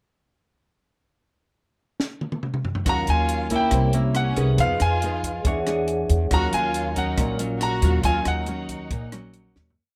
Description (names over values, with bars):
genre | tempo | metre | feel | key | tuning
bossa nova | 139 BPM | 4/4 | straight | Eb minor | A4 = 440 Hz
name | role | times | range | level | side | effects
compact cocktail drum kit | drums | 2.0-9.8 s | hi-hat, kick drum, rim click, snare drum, toms | -30 LUFS | equal | none
clear concert grand piano | melody | 2.9-9.5 s | F5 to Bb5 | -28 LUFS | equal | none
dark symphonic violin section | second line | 2.9-9.5 s | Cb4 to Gb4 | -34 LUFS | equal | none
nylon-string guitar | accompaniment | 2.9-9.8 s | Bb2 to C#5 | -30 LUFS | equal | none
vibraphone with soft mallets | accompaniment | 2.9-9.8 s | G4 to F6 | -35 LUFS | equal | none
upright bass | bass | 2.9-9.8 s | Bb1 to F2 | -27 LUFS | equal | none
room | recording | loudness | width
light reverb | none | -23 LUFS | mono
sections
1.1-2.9 pickup bar; 2.9-9.8 A section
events
drum fill 2.0-2.9, 9.6; fade-out 8.0-9.8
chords
1.1 N.C.; 2.9 Ebm9; 3.7 C7b9; 4.6 Fm7b5; 5.4 E13; 6.3 Ebm9